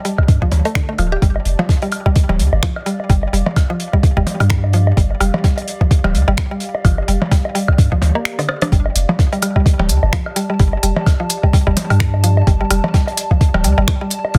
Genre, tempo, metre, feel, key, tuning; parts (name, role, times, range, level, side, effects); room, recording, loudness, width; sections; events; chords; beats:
minimal techno; 128 BPM; 4/4; swing 58% on 16ths; A4 = 440 Hz
mallet-like synth pluck; riff; 0.0-14.4 s; D3 to G4; -25 LUFS; equal; chorus, sidechain pumping, tape echo
warm soul drum kit; drums; 0.0-14.4 s; hi-hat, snare drum; -32 LUFS; equal; high-pass filter on hats, studio reverb, high-pass filter on snare, high-pass filter on room
warbly tape-like pad; texture; 0.0-14.4 s; G4 to A5; -32 LUFS; equal; chorus, built-in reverb, sidechain pumping
electronic kick drum; drums; 0.2-14.4 s; -16 LUFS; equal; studio reverb
woodblock and percussion blips; percussion; 0.2-14.4 s; -25 LUFS; equal; studio reverb
punchy sub bass; bass; 0.3-14.4 s; D1 to G2; -18 LUFS; equal; sidechain pumping
minimal click drum kit; drums; 0.8-14.2 s; finger snaps, hi-hat, rim click; -22 LUFS; equal; soft clipping on snare, studio reverb
little or no reverb; dense, heavily limited modern master; -16 LUFS; mono
0.0-14.4 A section
fade-in on ambient pad 0.0-14.4; break 8.3-8.7; drum fill 8.4-8.7
0.0 G5
0.28 0.75 | 1.22 1.69 2.16 2.63 | 3.10 3.56 4.03 4.50 | 4.97 5.44 5.91 6.38 | 6.85 7.32 7.78 8.25 | 8.72 9.19 9.66 10.13 | 10.60 11.06 11.53 12.00 | 12.47 12.94 13.41 13.88 | 14.35